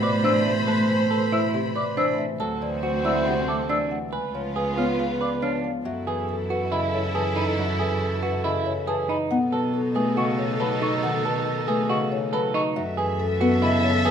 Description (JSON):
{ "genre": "classical, minimalist pattern music", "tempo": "139 BPM", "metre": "4/4", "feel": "straight", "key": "F# dorian from 5.9 s", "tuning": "A4 = 440 Hz", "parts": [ { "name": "marimba with medium mallets", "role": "melody", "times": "0.0-14.1 s", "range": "A4 to A5", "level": "-29 LUFS", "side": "left 7 dB", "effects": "none" }, { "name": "warm clarinet", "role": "second line", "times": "0.0-14.1 s", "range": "A4 to C5", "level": "-31 LUFS", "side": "right 3 dB", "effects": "none" }, { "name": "Celtic harp", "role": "accompaniment", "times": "0.0-14.1 s", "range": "B2 to B3", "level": "-28 LUFS", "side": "left 2 dB", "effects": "none" }, { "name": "rich studio violin section", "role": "sustained chords", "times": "0.0-14.1 s", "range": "B3 to B5", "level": "-31 LUFS", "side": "left 2 dB", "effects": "none" }, { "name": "mellow hollow silver concert flute", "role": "arpeggios", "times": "0.0-14.1 s", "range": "G#5 to E#6", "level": "-31 LUFS", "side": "left 3 dB", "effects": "none" }, { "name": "semi-hollow electric guitar", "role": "arpeggios", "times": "0.0-14.1 s", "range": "D4 to B4", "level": "-28 LUFS", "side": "right 6 dB", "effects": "none" }, { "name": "rich cello", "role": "bass", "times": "0.0-14.1 s", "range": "C#2 to B2", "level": "-29 LUFS", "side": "right 3 dB", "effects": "none" } ], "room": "moderate large studio reverb, RT60 1.2 s", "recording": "none", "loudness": "-21 LUFS", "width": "side -8 dB against mid", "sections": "0.0-5.9 A section; 5.9-14.1 B section", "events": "none", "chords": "0.0 Amadd9; 2.4 D7; 4.1 C#7b9; 5.9 F#m11; 9.3 B13; 12.8 F#m11" }